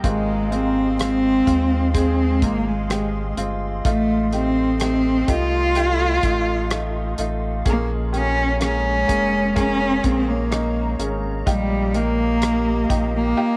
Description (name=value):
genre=pop ballad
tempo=63 BPM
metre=4/4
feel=straight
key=Ab major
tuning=A4 = 440 Hz
part: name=clear upright piano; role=accompaniment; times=0.0-13.6 s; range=Ab2 to Bb4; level=-29 LUFS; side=equal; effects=none
part: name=glassy FM pad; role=sustained chords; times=0.0-13.6 s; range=Ab3 to C6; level=-32 LUFS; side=equal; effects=ensemble chorus, built-in reverb
part: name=warm sub bass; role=bass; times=0.0-13.3 s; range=F1 to Eb2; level=-27 LUFS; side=equal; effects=none
part: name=damped 70s drum kit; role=drums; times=0.0-13.1 s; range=hi-hat, kick drum, rim click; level=-27 LUFS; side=equal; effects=none
part: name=rich cello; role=melody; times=0.1-13.6 s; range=G3 to F4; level=-23 LUFS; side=equal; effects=none
room=light reverb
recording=none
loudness=-20 LUFS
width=mono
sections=0.0-13.6 A section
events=none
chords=0.0 Ab6; 3.9 F7/A; 7.7 Bbm7; 11.5 Ebadd9/Bb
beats=| 0.04 0.99 1.95 2.90 | 3.85 4.80 5.76 6.71 | 7.66 8.61 9.56 10.52 | 11.47 12.42 13.38